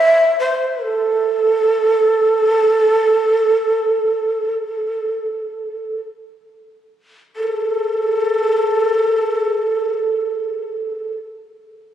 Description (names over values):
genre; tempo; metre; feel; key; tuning
japanese traditional; free time; none; none; A minor; A4 = 440 Hz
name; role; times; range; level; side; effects
breathy mellow shakuhachi; solo; 0.0-11.2 s; A4 to E5; -15 LUFS; right 1 dB; none
room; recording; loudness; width
wet church reverb, RT60 2.8 s; recorded on a phone in the room, studio reverb; -15 LUFS; side -10 dB against mid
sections
0.0-7.3 A section; 7.3-11.9 B section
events
slowing down 0.0-7.3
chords
none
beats
free time